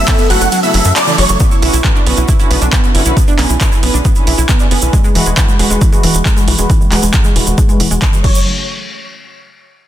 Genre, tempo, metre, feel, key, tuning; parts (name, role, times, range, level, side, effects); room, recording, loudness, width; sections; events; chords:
uplifting trance; 136 BPM; 4/4; straight; A4 = 440 Hz
big supersaw lead; melody; 0.0-1.4, 8.2-8.4 s; C#5 to F#5; -17 LUFS; right 1 dB; phaser, sidechain pumping, digital delay
warm velvety synth lead; second line; 0.0-0.7 s; F#4 to A4; -21 LUFS; left 4 dB; chorus, tremolo, tape echo
wide unison pluck; second line; 0.0-1.4 s; C#6 to F#6; -26 LUFS; equal
tight sequencer bass; bass; 0.0-8.4 s; E1 to F#2; -15 LUFS; equal; sidechain pumping
dark chamber string section; sustained chords; 0.1-8.4 s; C#3 to C#5; -20 LUFS; left 1 dB; sidechain pumping, low-pass filter
analog pluck; arpeggios; 0.1-8.4 s; E3 to E4; -18 LUFS; right 2 dB; chorus, sidechain pumping, digital delay
electronic kick drum; drums; 0.1-8.3 s; -12 LUFS; equal
punchy analog drum machine; drums; 0.1-8.3 s; crash cymbal, handclaps, hi-hat, ride cymbal; -18 LUFS; right 1 dB; sidechain pumping on hats, sidechain pumping on cymbals
egg shaker; percussion; 0.1-8.4 s; -23 LUFS; right 4 dB
digital ambience; dense, heavily limited modern master; -9 LUFS; side -12 dB against mid
0.0-1.4 A section; 1.4-8.5 B section; 8.5-9.9 C section
drop 0.0-1.4; kick drops out 0.5-1.4; band accent 1.0; filter sweep on analog synth bass 1.4-8.5; filter sweep on synth pluck 1.4-8.5; filter sweep on string section 1.4-8.5
0.0 F#m; 1.4 Bmadd9; 4.9 Eadd9; 8.2 F#m; 8.5 N.C.